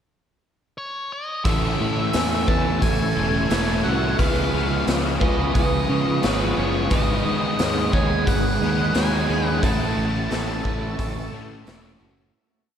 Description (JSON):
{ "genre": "rock, shoegaze and dream pop", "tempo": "88 BPM", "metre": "4/4", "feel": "straight", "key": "A lydian", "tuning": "A4 = 440 Hz", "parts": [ { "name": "octave-fuzz lead guitar", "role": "melody", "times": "0.8-11.6 s", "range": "B4 to A5", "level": "-28 LUFS", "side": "equal", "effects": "distortion, diffuse ambient delay" }, { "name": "overdriven semi-hollow guitar", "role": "riff", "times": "1.4-12.3 s", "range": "G#2 to A4", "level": "-27 LUFS", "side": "left 7 dB", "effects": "ensemble chorus" }, { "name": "overdriven semi-hollow guitar", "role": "riff", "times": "1.4-12.3 s", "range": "G#2 to A4", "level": "-26 LUFS", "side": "right 6 dB", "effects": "reverse reverb" }, { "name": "raw garage drum kit", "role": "drums", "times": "1.4-11.8 s", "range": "hi-hat, kick drum, snare drum", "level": "-25 LUFS", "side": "equal", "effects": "none" }, { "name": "glassy FM pad", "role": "sustained chords", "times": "2.5-12.3 s", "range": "G#4 to E6", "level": "-32 LUFS", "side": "equal", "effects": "ensemble chorus, built-in reverb" }, { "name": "picked plugged-in twelve-string acoustic guitar", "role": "arpeggios", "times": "1.5-12.3 s", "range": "E4 to G#5", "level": "-31 LUFS", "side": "right 5 dB", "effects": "lush chorus, diffuse ambient delay" }, { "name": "growling fingered electric bass", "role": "bass", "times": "1.5-12.3 s", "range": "E1 to C#3", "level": "-26 LUFS", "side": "equal", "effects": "overdrive" } ], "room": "wet lush hall reverb, RT60 1.9 s, studio reverb", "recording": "dreamy mix soaked in reverb", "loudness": "-19 LUFS", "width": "side -8 dB against mid", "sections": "0.0-1.5 pickup bar; 1.5-12.3 A section", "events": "fade-out 9.6-12.3", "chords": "0.0 N.C.; 1.5 Amaj7; 4.2 C#9; 6.9 G#m7; 9.6 A" }